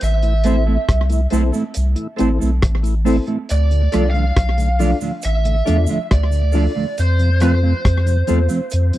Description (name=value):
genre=roots reggae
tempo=69 BPM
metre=4/4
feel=straight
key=unclear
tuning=A4 = 436 Hz
part: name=lead guitar through a small cranked amp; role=melody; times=0.0-9.0 s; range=C5 to F5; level=-24 LUFS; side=right 2 dB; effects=overdrive, dub echo
part: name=warm sub bass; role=bass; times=0.0-8.9 s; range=A1 to F2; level=-16 LUFS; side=equal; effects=none
part: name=cloth-damped thuddy drum kit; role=drums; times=0.0-9.0 s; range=hi-hat, kick drum, rim click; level=-18 LUFS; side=equal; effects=slapback echo
part: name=cabasa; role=percussion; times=0.0-8.9 s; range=none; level=-38 LUFS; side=right 8 dB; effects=none
part: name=tonewheel organ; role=accompaniment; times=0.2-9.0 s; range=D2 to F4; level=-26 LUFS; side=left 3 dB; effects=slow rotary speaker
part: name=mellow electric guitar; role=accompaniment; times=0.4-8.6 s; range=F3 to A4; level=-23 LUFS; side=right 7 dB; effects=spring reverb, dub echo
part: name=reed electric piano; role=stabs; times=0.5-8.5 s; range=C4 to D5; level=-21 LUFS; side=left 6 dB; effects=fast tremolo
room=little or no reverb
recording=dry, close 1970s-style studio recording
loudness=-15 LUFS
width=side -14 dB against mid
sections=0.0-9.0 A section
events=none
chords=0.0 Am; 3.5 Dm; 7.0 F